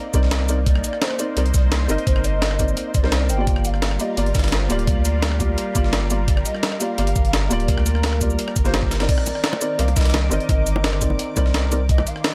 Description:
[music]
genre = liquid drum and bass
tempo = 171 BPM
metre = 4/4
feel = straight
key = C minor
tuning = A4 = 440 Hz
[part]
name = felt-muted upright piano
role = accompaniment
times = 0.0-11.8 s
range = Bb3 to Eb5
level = -29 LUFS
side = equal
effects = vintage 12-bit sampler grit
[part]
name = lush unison pad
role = sustained chords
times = 0.0-12.3 s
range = Eb3 to D6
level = -34 LUFS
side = equal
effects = chorus, phaser
[part]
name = warm sub bass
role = bass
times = 0.1-12.1 s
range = D1 to D2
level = -24 LUFS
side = equal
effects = none
[part]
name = breakbeat sampler-style drum kit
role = drums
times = 0.1-12.3 s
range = crash cymbal, hi-hat, rim click, shaker, snare drum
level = -27 LUFS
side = equal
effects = none
[part]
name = breakbeat sampler-style drum kit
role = drums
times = 0.1-12.3 s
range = hi-hat, snare drum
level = -34 LUFS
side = equal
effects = high-pass filter on snare, high-pass filter on hats
[part]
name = electronic kick drum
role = drums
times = 0.1-12.0 s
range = none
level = -23 LUFS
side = equal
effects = none
[part]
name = hollow clarinet-like synth lead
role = melody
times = 0.7-12.3 s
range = Bb4 to G5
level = -32 LUFS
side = equal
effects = ensemble chorus, digital delay
[part]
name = bongos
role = percussion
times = 9.3-12.1 s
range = none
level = -31 LUFS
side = equal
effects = none
[sound]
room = little or no reverb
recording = none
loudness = -20 LUFS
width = mono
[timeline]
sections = 0.0-12.3 A section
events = none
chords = 0.0 Cm9; 3.5 Gm7; 9.1 Cm9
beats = 0.32 | 0.67 1.02 1.37 1.72 | 2.07 2.42 2.77 3.12 | 3.47 3.82 4.17 4.53 | 4.88 5.23 5.58 5.93 | 6.28 6.63 6.98 7.33 | 7.68 8.03 8.38 8.74 | 9.09 9.44 9.79 10.14 | 10.49 10.84 11.19 11.54 | 11.89 12.24

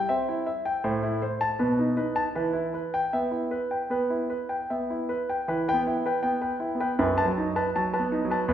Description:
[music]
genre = classical, baroque-style suite movement for grand piano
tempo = 76-80 BPM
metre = 4/4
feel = rubato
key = E minor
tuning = A4 = 439 Hz
[part]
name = clear concert grand piano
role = solo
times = 0.0-8.5 s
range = E2 to A5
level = -24 LUFS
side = equal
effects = none
[sound]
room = wet recital hall reverb, RT60 1.8 s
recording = recorded in a church or concert hall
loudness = -24 LUFS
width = side -10 dB against mid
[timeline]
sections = 0.0-5.5 A section; 5.5-8.5 B section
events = none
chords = 0.0 C; 0.8 Am; 1.6 B7; 2.3 Em; 7.0 B7/F#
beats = 0.08 0.83 1.58 | 2.35 3.13 3.91 4.70 | 5.47 6.23 6.98 7.73 | 8.48

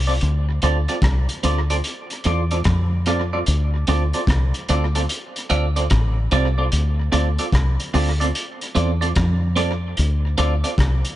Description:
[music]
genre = roots reggae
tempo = 74 BPM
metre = 4/4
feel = swing 65% on 16ths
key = D minor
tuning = A4 = 440 Hz
[part]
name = deep dub fingered electric bass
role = bass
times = 0.0-11.0 s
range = A1 to F2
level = -19 LUFS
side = equal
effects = none
[part]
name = clean electric guitar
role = accompaniment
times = 0.1-10.7 s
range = C4 to D5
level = -24 LUFS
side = right 2 dB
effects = phaser, dub echo
[part]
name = crunchy breakbeat drum kit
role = drums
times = 0.2-11.2 s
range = hi-hat, kick drum, rim click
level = -25 LUFS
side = equal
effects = tape echo
[sound]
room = little or no reverb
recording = nothing above 11.0 kHz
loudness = -18 LUFS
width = side -14 dB against mid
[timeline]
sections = 0.0-11.2 A section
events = none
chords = 0.0 Dm7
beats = | 0.21 1.02 1.83 2.65 | 3.46 4.28 5.09 5.91 | 6.72 7.53 8.35 9.16 | 9.97 10.79

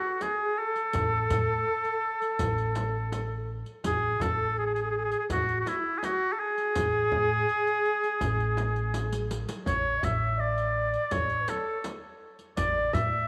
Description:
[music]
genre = Arabic maqam ensemble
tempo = 82 BPM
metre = 4/4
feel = straight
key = A maqam ajam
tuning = A4 = 444 Hz
[part]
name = warm oboe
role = melody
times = 0.0-13.3 s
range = E4 to E5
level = -31 LUFS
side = equal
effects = slapback echo
[part]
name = breathy mellow ney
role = second line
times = 0.0-13.3 s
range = E4 to E5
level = -36 LUFS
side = equal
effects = none
[part]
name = darbuka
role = percussion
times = 0.0-13.1 s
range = none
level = -40 LUFS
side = equal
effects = none
[part]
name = frame drum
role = percussion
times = 0.2-13.1 s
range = none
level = -40 LUFS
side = equal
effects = none
[part]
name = riq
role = percussion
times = 0.2-13.1 s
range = none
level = -45 LUFS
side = equal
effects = none
[part]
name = upright bass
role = bass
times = 0.9-13.2 s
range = A1 to A2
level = -34 LUFS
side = equal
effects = none
[sound]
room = moderate plate reverb, RT60 2.8 s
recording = none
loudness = -28 LUFS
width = mono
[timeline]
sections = 0.0-13.3 A section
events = drum fill 8.9-9.7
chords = none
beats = 0.21 | 0.94 1.67 2.40 3.12 | 3.85 4.58 5.30 6.03 | 6.76 7.49 8.21 8.94 | 9.67 10.39 11.12 11.85 | 12.57

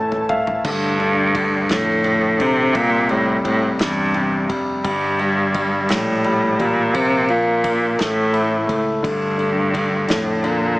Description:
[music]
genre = six-eight pop ballad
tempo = 57 BPM (dotted quarters)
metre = 6/8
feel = straight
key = D minor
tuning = A4 = 440 Hz
[part]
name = clear concert grand piano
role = accompaniment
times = 0.0-10.8 s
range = C3 to A5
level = -21 LUFS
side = left 1 dB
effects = none
[part]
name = glassy FM pad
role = sustained chords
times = 0.0-0.6 s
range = E4 to A5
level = -31 LUFS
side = equal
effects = ensemble chorus, built-in reverb
[part]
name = fingered electric bass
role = bass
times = 0.0-10.8 s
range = F1 to F2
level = -31 LUFS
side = equal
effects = none
[part]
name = unplugged drum kit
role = drums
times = 0.1-10.6 s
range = crash cymbal, kick drum, ride cymbal, snare drum, toms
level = -28 LUFS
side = equal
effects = none
[part]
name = rich cello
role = melody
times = 0.7-10.8 s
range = G2 to C3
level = -18 LUFS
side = equal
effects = none
[sound]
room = light reverb, studio ambience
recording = small speaker sound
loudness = -16 LUFS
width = side -20 dB against mid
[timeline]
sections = 0.6-10.8 A section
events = drum fill 0.0-0.6; grand piano fill 0.0-0.6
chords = 0.0 A; 0.6 Dm; 2.7 C; 4.8 Gm; 6.9 Bb5; 8.0 A; 9.0 Dm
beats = | 0.64 1.69 | 2.74 3.79 | 4.84 5.90 | 6.95 8.00 | 9.05 10.10

